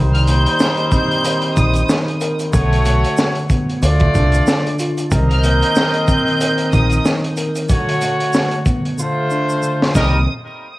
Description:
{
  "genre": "hip hop, boom-bap hip-hop",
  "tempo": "93 BPM",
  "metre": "4/4",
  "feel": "swing 57% on 16ths",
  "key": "C dorian",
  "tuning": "A4 = 441 Hz",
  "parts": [
    { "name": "mellow tine electric piano", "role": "accompaniment", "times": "0.0-10.3 s", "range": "D3 to Bb4", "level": "-21 LUFS", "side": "equal", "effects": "medium stereo tremolo, cassette tape, high-pass filter, low-pass filter" },
    { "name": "clear horn section", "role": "stabs", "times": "0.0-10.2 s", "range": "G3 to Eb5", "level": "-20 LUFS", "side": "equal", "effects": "high-pass filter, low-pass filter, cassette tape, tape echo" },
    { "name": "deep dub fingered electric bass", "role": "bass", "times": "0.0-10.3 s", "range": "Bb1 to D2", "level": "-15 LUFS", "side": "equal", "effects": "none" },
    { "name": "rich studio violin section", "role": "melody", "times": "0.1-10.3 s", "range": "Eb6 to G6", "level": "-22 LUFS", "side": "right 1 dB", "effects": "high-pass filter, low-pass filter, cassette tape, tape echo" },
    { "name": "crunchy breakbeat drum kit", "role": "drums", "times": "0.1-10.1 s", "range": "hi-hat, kick drum, snare drum", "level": "-19 LUFS", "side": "equal", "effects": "cassette tape" },
    { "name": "egg shaker", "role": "percussion", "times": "0.3-10.3 s", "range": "none", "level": "-33 LUFS", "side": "right 2 dB", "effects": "none" }
  ],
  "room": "light reverb",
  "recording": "home recording on cassette, vinyl crackle",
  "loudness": "-14 LUFS",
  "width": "side -18 dB against mid",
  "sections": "0.0-10.3 A section",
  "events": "drum fill 9.0-10.3",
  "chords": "0.0 Cm7; 2.5 Bm7; 3.8 Dm7; 5.1 Cm7; 7.7 Bm7; 9.0 Dm7; 10.0 Cm7; 10.3 N.C.",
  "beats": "0.60 1.24 1.89 | 2.53 3.18 3.82 4.47 | 5.11 5.76 6.41 7.05 | 7.70 8.34 8.98 9.63 | 10.28"
}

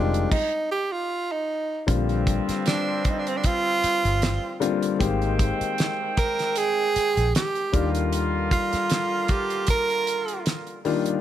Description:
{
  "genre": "lush 1970s-style soul",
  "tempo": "77 BPM",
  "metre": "4/4",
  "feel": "swing 54% on 16ths",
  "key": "Bb mixolydian",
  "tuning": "A4 = 440 Hz",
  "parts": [
    { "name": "breathy tenor saxophone", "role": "melody", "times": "0.0-10.4 s", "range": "C4 to Bb4", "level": "-24 LUFS", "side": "right 3 dB", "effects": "none" },
    { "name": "warm grand piano", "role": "accompaniment", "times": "0.0-11.2 s", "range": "D3 to G4", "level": "-28 LUFS", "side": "left 7 dB", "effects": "none" },
    { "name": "vintage muted fingered electric bass", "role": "bass", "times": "0.0-8.8 s", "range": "F1 to Eb2", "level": "-26 LUFS", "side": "equal", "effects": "none" },
    { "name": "damped 70s drum kit", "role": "drums", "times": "0.1-11.2 s", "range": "crash cymbal, hi-hat, kick drum, snare drum", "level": "-26 LUFS", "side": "right 1 dB", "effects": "none" },
    { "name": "clear horn section", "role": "stabs", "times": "1.9-10.8 s", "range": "G2 to G5", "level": "-31 LUFS", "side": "right 2 dB", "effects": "none" }
  ],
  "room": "small room ambience",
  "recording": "none",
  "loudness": "-22 LUFS",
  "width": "side -11 dB against mid",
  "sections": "0.0-1.9 A section; 1.9-11.2 B section",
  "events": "tenor saxophone solo 0.0-1.9; stop 0.3-1.9",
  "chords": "0.0 Fm7; 1.9 Bb69; 5.0 Abmaj9; 7.7 Ebmaj9",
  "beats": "0.31 1.09 | 1.88 2.66 3.44 4.22 | 5.00 5.78 6.56 7.34 | 8.13 8.91 9.69 10.47"
}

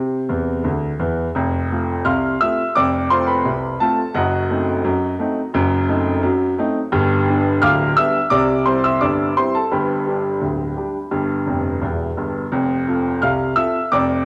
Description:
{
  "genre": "ragtime piano",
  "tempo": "86 BPM",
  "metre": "2/4",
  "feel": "straight",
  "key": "unclear",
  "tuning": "A4 = 441 Hz",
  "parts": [
    { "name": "clear concert grand piano", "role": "solo", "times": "0.0-14.2 s", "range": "D1 to F6", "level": "-19 LUFS", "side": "equal", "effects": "none" }
  ],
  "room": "moderate lush hall reverb, RT60 2.6 s",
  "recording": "home recording on cassette",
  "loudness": "-19 LUFS",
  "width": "mono",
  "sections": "0.0-1.4 A section; 1.4-12.5 B section; 12.5-14.2 B section",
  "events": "grand piano fill 0.3-1.4, 11.5-12.5",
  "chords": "0.0 C; 1.4 F; 4.1 F#dim7; 6.9 G7; 8.3 C; 9.7 G; 12.5 F",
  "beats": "0.66 | 1.36 2.06 | 2.75 3.45 | 4.14 4.84 | 5.54 6.23 | 6.92 7.62 | 8.31 9.01 | 9.71 10.41 | 11.12 11.82 | 12.52 13.22 | 13.91"
}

